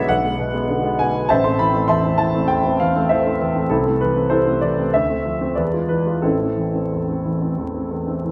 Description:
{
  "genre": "classical, romantic character piece for solo piano",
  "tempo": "86-102 BPM",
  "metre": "4/4",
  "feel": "rubato",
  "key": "A minor",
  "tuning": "A4 = 439 Hz",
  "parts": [
    { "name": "warm grand piano", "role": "solo", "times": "0.0-8.3 s", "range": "A1 to C6", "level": "-19 LUFS", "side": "equal", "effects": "none" }
  ],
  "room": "wet large studio reverb, RT60 1.2 s",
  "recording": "heard from further back in the room, vinyl crackle",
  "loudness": "-19 LUFS",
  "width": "mono",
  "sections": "0.0-8.3 A section",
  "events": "none",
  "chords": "0.0 G#dim/B; 1.3 Am; 3.7 Am/C; 4.9 Dm7; 5.6 E7b9; 6.2 Am"
}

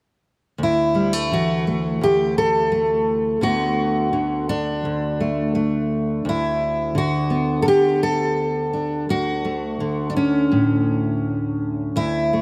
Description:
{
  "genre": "folk, solo fingerstyle acoustic guitar",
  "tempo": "85 BPM",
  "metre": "4/4",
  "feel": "straight",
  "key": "D major",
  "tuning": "A4 = 445 Hz",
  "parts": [
    { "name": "fingerpicked steel-string acoustic guitar", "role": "solo", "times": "0.6-12.4 s", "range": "D2 to A4", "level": "-21 LUFS", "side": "equal", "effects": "subtle chorus" }
  ],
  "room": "wet plate reverb, RT60 3.2 s",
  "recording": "dreamy mix soaked in reverb",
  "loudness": "-21 LUFS",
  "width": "mono",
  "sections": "0.6-12.4 A section",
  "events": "none",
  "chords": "0.6 A5/D; 3.4 Bm7/D; 6.3 D69; 9.1 Dmaj7"
}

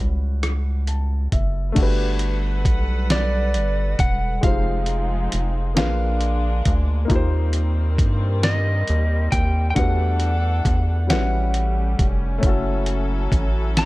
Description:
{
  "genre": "slow six-eight R&B",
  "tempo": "45 BPM (dotted quarters)",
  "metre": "6/8",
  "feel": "straight",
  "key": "unclear",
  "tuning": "A4 = 439 Hz",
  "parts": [
    { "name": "warm concert grand piano", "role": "accompaniment", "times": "0.0-13.9 s", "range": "G3 to A5", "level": "-28 LUFS", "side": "left 3 dB", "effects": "none" },
    { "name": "rubbery square bass", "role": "bass", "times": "0.0-13.9 s", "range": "E1 to G2", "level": "-21 LUFS", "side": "equal", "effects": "none" },
    { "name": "dusty soul sampler-style drum kit", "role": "drums", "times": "0.4-13.9 s", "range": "crash cymbal, hi-hat, kick drum, rim click, snare drum", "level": "-21 LUFS", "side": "equal", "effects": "overdrive" },
    { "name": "warm studio string section", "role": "sustained chords", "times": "1.8-13.9 s", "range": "Eb3 to F#5", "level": "-31 LUFS", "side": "left 1 dB", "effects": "none" },
    { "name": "lightly driven lead guitar", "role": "melody", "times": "3.1-13.9 s", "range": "D5 to B5", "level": "-26 LUFS", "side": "equal", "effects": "none" }
  ],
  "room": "digital ambience",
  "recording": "dark, warm production",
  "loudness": "-18 LUFS",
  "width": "side -19 dB against mid",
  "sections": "0.0-1.8 A section; 1.8-13.9 B section",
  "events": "grand piano fill 0.4-1.8",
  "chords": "0.0 A13; 1.8 Gmaj9; 4.4 Fm7; 5.8 Bb7b9; 7.1 Eb6; 9.8 Em11; 11.1 A13; 12.4 F#m7"
}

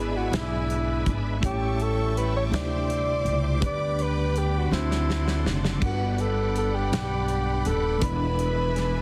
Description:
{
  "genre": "slow gospel",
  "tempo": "55 BPM (dotted quarters)",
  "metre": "6/8",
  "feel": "straight",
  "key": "G major",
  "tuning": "A4 = 440 Hz",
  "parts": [
    { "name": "warm alto saxophone", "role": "melody", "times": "0.0-9.0 s", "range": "E4 to D5", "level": "-31 LUFS", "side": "equal", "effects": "none" },
    { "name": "mellow tine electric piano", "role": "accompaniment", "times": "0.0-9.0 s", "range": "G2 to F#5", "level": "-32 LUFS", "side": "equal", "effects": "none" },
    { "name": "bright tonewheel organ", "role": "sustained chords", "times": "0.0-9.0 s", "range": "F#3 to F#5", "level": "-39 LUFS", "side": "equal", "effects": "slow rotary speaker, overdrive, chorus vibrato" },
    { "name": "warm symphonic string section", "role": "sustained chords", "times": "0.0-9.0 s", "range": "D5 to D6", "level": "-40 LUFS", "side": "equal", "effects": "none" },
    { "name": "upright bass", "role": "bass", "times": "0.0-9.0 s", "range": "Eb1 to D2", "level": "-30 LUFS", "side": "equal", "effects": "none" },
    { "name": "modern studio drum kit", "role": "drums", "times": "0.3-8.9 s", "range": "crash cymbal, hi-hat, kick drum, snare drum", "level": "-33 LUFS", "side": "equal", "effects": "none" }
  ],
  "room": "light reverb, studio reverb",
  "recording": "heavily compressed radio sound, multiband compression",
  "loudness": "-26 LUFS",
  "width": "mono",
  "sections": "0.0-9.0 A section",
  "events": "drum fill 4.7-5.8",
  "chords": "0.0 E7/G#; 1.4 A7; 2.5 D9sus4; 3.6 G/D; 4.7 D7; 5.8 Gmaj7; 8.0 E7"
}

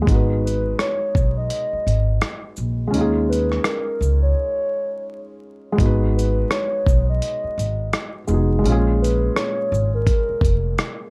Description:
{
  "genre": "lo-fi hip hop",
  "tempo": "84 BPM",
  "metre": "4/4",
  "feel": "swing 62% on 16ths",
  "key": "G# dorian",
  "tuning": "A4 = 440 Hz",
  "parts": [
    { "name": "felt-muted upright piano", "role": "accompaniment", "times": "0.0-11.1 s", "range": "A#2 to B4", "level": "-28 LUFS", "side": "equal", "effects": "low-pass filter" },
    { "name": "upright bass", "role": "bass", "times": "0.0-10.7 s", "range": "E#1 to D#2", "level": "-23 LUFS", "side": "equal", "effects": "none" },
    { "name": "dusty soul sampler-style drum kit", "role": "drums", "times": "0.1-11.0 s", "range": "hi-hat, kick drum, rim click, shaker", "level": "-23 LUFS", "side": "equal", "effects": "none" },
    { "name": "hollow clarinet-like synth lead", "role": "melody", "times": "0.4-11.0 s", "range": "A#4 to D#5", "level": "-27 LUFS", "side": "equal", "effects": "chorus, low-pass filter, plate reverb" }
  ],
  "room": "light reverb",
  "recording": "vinyl crackle",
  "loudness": "-20 LUFS",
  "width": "mono",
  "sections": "0.0-11.1 A section",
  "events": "break 4.4-5.8",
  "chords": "0.1 G#m9; 2.9 D#7sus4; 5.8 G#m7; 8.6 A#m7"
}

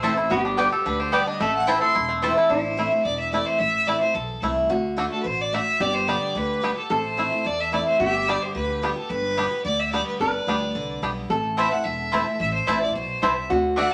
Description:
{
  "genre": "bluegrass",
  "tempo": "218 BPM",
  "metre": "4/4",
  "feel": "straight",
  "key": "A dorian",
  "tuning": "A4 = 437 Hz",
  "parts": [
    { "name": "bluegrass banjo", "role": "melody", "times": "0.0-13.8 s", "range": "A3 to A4", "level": "-28 LUFS", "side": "equal", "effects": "none" },
    { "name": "clear fiddle", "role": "melody", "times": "0.0-13.9 s", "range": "A4 to C6", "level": "-28 LUFS", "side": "equal", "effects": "none" },
    { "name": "lap resonator guitar", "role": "second line", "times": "0.0-13.9 s", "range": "E4 to B4", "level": "-30 LUFS", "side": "equal", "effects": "none" },
    { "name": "picked steel-string acoustic guitar", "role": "accompaniment", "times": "0.0-13.9 s", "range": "E2 to G4", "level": "-30 LUFS", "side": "equal", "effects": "none" },
    { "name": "mandolin", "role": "stabs", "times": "0.0-2.3, 11.6-13.9 s", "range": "A3 to A5", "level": "-26 LUFS", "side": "equal", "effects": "none" },
    { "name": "upright bass", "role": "bass", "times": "0.0-13.9 s", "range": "E1 to E2", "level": "-34 LUFS", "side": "equal", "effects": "none" }
  ],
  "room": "wet studio reverb, RT60 0.6 s",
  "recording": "none",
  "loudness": "-23 LUFS",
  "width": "mono",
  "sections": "0.0-2.5 A section; 2.5-13.9 B section",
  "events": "fiddle solo 0.0-2.5",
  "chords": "0.3 G; 1.4 Am; 4.7 D; 5.8 G; 6.9 Am; 8.0 G; 11.3 Am"
}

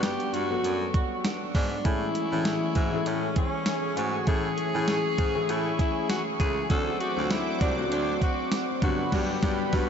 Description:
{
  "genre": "1980s-style pop",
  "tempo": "99 BPM",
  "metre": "4/4",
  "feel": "swing 55% on 16ths",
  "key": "A major",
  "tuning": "A4 = 439 Hz",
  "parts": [
    { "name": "raspy tenor saxophone", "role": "melody", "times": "0.0-9.9 s", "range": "C#4 to A4", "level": "-30 LUFS", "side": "left 1 dB", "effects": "analog delay" },
    { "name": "clear grand piano", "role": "accompaniment", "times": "0.0-9.9 s", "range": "D3 to B4", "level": "-31 LUFS", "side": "left 4 dB", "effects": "lush chorus" },
    { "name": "direct-recorded clean electric guitar", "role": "riff", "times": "0.0-9.3 s", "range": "E3 to G#4", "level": "-36 LUFS", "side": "right 6 dB", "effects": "lush chorus, analog delay" },
    { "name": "bright baritone saxophone", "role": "bass", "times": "0.0-9.9 s", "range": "C2 to A2", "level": "-33 LUFS", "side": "right 1 dB", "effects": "none" },
    { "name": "clean 12-bit digital drum machine", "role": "drums", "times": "0.0-9.9 s", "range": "crash cymbal, hi-hat, kick drum, snare drum, tambourine", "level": "-29 LUFS", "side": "right 1 dB", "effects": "overdrive" },
    { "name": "chorused pulse-width pad", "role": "sustained chords", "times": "1.9-9.9 s", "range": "G#4 to D6", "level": "-34 LUFS", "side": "right 1 dB", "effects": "none" }
  ],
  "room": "wet huge ambient reverb, RT60 7.7 s",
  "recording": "dreamy mix soaked in reverb, nothing above 7.8 kHz",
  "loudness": "-24 LUFS",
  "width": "side -7 dB against mid",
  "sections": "0.0-9.9 A section",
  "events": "band accent 9.1-9.9",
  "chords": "0.0 Gmaj7; 1.9 Amaj7; 6.7 D7; 8.8 Gmaj7"
}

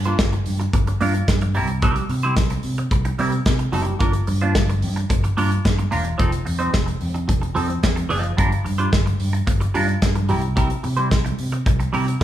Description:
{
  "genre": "disco",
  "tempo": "110 BPM",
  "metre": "4/4",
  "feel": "straight",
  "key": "G minor",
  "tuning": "A4 = 435 Hz",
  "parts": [
    { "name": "fingered electric bass", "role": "bass", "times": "0.0-12.2 s", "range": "E1 to C3", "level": "-22 LUFS", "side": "equal", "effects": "none" },
    { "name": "modern studio drum kit", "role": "drums", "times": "0.0-12.2 s", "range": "hi-hat, kick drum, snare drum", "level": "-22 LUFS", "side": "equal", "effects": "none" },
    { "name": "semi-hollow electric guitar", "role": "accompaniment", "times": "0.1-12.2 s", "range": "F3 to C5", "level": "-24 LUFS", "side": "right 2 dB", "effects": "phaser" }
  ],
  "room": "wet large studio reverb, RT60 1.1 s",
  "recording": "band playing live in one room",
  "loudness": "-18 LUFS",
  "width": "side -12 dB against mid",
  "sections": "0.0-12.2 A section",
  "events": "none",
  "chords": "0.0 Gm7; 1.6 C7; 4.0 Gm7; 6.2 F7; 8.4 Gm7; 10.3 C7"
}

